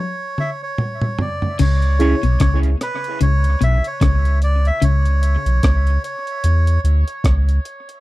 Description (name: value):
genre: dub reggae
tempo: 74 BPM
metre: 4/4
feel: swing 58% on 16ths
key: C# phrygian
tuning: A4 = 440 Hz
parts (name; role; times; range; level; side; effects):
- melodica; melody; 0.0-6.8 s; B4 to E5; -24 LUFS; right 1 dB; dub echo
- breakbeat sampler-style drum kit; drums; 0.4-8.0 s; crash cymbal, hi-hat, kick drum, rim click, toms; -21 LUFS; equal; none
- electric guitar at the edge of break-up; riff; 1.6-5.1 s; B2 to C#3; -21 LUFS; left 5 dB; dub echo
- soft dub sub bass; bass; 1.6-7.6 s; B1 to E2; -15 LUFS; equal; none
- semi-hollow electric guitar; accompaniment; 2.0-2.1 s; C#4 to C#5; -26 LUFS; right 3 dB; lush chorus, high-pass filter, dub echo
- reed electric piano; stabs; 2.0-2.2 s; E4 to E5; -26 LUFS; equal; phaser, high-pass filter, dub echo
room: little or no reverb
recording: dry, close 1970s-style studio recording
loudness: -15 LUFS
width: side -18 dB against mid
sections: 0.0-1.6 A section; 1.6-8.0 B section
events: break 0.0-1.6; drum fill 0.0-1.6; stop 0.0-1.6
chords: 0.0 N.C.; 1.6 C#m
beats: 0.79 | 1.59 2.40 3.21 4.02 | 4.82 5.63 6.44 7.24